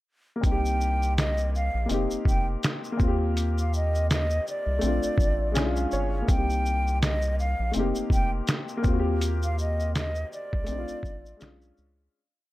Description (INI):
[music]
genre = lo-fi hip hop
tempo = 82 BPM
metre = 4/4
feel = swing 56% on 16ths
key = C dorian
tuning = A4 = 440 Hz
[part]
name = warm upright piano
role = accompaniment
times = 0.4-12.2 s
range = G#3 to G#5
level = -30 LUFS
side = left 2 dB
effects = none
[part]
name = round analog bass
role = bass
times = 0.4-12.1 s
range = F1 to Eb2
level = -27 LUFS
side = equal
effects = none
[part]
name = lo-fi sampler-style drum kit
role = drums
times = 0.4-12.0 s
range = finger snaps, hi-hat, kick drum, shaker, snare drum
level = -27 LUFS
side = equal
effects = none
[part]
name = breathy mellow silver concert flute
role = melody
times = 0.5-11.6 s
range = D5 to G5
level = -31 LUFS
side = equal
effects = none
[sound]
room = light reverb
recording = none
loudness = -24 LUFS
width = side -17 dB against mid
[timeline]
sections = 0.4-12.1 A section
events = upright piano fill 5.2-6.3; fade-out 9.2-12.1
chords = 0.4 Cm7; 1.9 F7sus4; 3.0 Eb6; 4.8 Bbmaj7; 5.6 Bdim7; 6.3 Cm7; 7.8 F7sus4; 8.8 Eb6; 10.7 Bbmaj7; 11.4 Bdim7